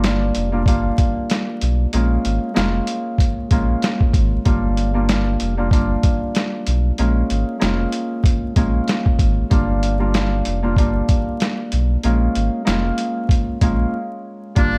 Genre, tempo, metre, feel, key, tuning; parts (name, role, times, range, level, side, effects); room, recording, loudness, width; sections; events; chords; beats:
hip hop, boom-bap hip-hop; 95 BPM; 4/4; swing 56% on 16ths; A4 = 440 Hz
Celtic harp; accompaniment; 0.0-14.8 s; G3 to F4; -24 LUFS; equal
sub bass with octave; bass; 0.0-14.8 s; F1 to B1; -22 LUFS; equal
trip hop sampler-style drum kit; drums; 0.0-14.7 s; hi-hat, kick drum, snare drum; -21 LUFS; equal
trumpet with metal mute; melody; 14.6-14.8 s; D4; -24 LUFS; equal
little or no reverb; dark, warm production, vinyl crackle; -19 LUFS; mono
0.0-4.5 A section; 4.5-14.8 A section
break 13.9-14.6
0.0 Gm7; 1.9 Bbm7; 4.5 Gm7; 7.0 Bbm7; 9.5 Gm7; 12.0 Bbm7
0.04 0.67 1.30 | 1.93 2.56 3.20 3.83 | 4.46 5.09 5.72 6.35 | 6.99 7.62 8.25 8.88 | 9.51 10.14 10.78 11.41 | 12.04 12.67 13.30 13.93 | 14.56